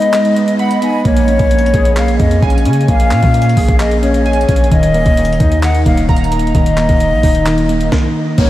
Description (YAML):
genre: hip hop, trap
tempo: 131 BPM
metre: 4/4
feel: half-time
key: unclear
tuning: A4 = 440 Hz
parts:
  - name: breathy hollow concert flute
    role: second line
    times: 0.0-8.5 s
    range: Db5 to Ab5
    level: -16 LUFS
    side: left 3 dB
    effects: diffuse ambient delay
  - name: warbly lo-fi synth keys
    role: arpeggios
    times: 0.0-8.5 s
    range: Eb3 to Cb6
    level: -15 LUFS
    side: right 2 dB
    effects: chorus, diffuse ambient delay
  - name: breakbeat sampler-style drum kit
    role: drums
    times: 0.0-8.5 s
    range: crash cymbal, handclaps, hi-hat, kick drum, snare drum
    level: -16 LUFS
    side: equal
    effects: none
  - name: long sustained 808-style bass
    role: bass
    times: 1.1-8.5 s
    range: Eb1 to Db3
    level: -15 LUFS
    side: equal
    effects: none
  - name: warm analog pad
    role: sustained chords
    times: 8.4-8.5 s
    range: Ab3 to Bb4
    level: -25 LUFS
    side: right 2 dB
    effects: none
  - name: downlifter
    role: sound effects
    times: 8.4-8.5 s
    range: none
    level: -21 LUFS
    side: left 1 dB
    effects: none
room: moderate huge ambient reverb, RT60 8.2 s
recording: dreamy mix soaked in reverb, vinyl crackle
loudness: -10 LUFS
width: side -14 dB against mid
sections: 0.0-8.4 A section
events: break 0.0-1.1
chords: 0.0 Abm; 1.1 Bbm7; 4.7 Eb5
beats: 0.14 0.59 | 1.05 1.51 1.97 2.42 | 2.88 3.34 3.80 4.26 | 4.71 5.17 5.63 6.09 | 6.55 7.00 7.46 7.92 | 8.38